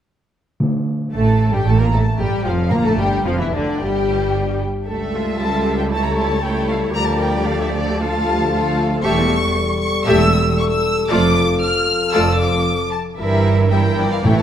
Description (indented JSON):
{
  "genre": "quick classical-period movement for symphony orchestra",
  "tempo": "115 BPM",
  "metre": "4/4",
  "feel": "rubato",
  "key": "D minor",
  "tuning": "A4 = 441 Hz",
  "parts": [
    { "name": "timpani", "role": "percussion", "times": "0.6-3.5, 14.2-14.4 s", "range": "A2 to D3", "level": "-22 LUFS", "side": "equal", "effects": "none" },
    { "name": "dark chamber violin section", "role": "melody", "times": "1.1-14.4 s", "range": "D5 to F6", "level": "-23 LUFS", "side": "left 1 dB", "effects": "none" },
    { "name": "rich studio violin section", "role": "second line", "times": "1.1-14.4 s", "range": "D4 to F5", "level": "-25 LUFS", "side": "left 2 dB", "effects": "none" },
    { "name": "clear chamber viola section", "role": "accompaniment", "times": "1.1-14.4 s", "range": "D3 to A4", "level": "-23 LUFS", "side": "equal", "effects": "none" },
    { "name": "dark French horn section", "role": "sustained chords", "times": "1.1-14.4 s", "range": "D3 to Bb4", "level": "-22 LUFS", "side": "left 3 dB", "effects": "none" },
    { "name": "clear chamber cello section", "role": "bass", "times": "1.1-14.4 s", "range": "C#2 to Bb2", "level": "-22 LUFS", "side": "right 2 dB", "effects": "none" },
    { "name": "rich chamber double bass section", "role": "bass", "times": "1.1-14.4 s", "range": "E1 to D2", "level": "-22 LUFS", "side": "right 2 dB", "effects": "none" }
  ],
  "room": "moderate scoring stage reverb, RT60 1.7 s",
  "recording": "none",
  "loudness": "-15 LUFS",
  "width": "side -10 dB against mid",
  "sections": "0.6-14.4 A section",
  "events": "none",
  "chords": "0.6 Fadd9; 2.7 Gm; 4.9 A7/C#; 6.9 Dm; 9.1 A7/E; 11.1 Dm/F; 13.2 Edim/G"
}